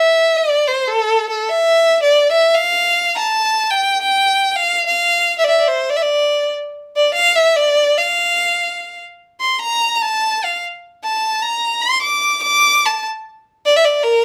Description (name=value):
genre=klezmer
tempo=146 BPM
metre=2/4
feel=straight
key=D minor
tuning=A4 = 439 Hz
part: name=clear violin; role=solo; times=0.0-14.2 s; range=A4 to D6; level=-16 LUFS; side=equal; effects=none
room=moderate studio reverb, RT60 0.6 s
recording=none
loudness=-16 LUFS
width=mono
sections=0.0-6.7 A section; 6.7-13.2 B section; 13.2-14.2 C section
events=speeding up 0.0-14.2; violin solo 6.7-13.2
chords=none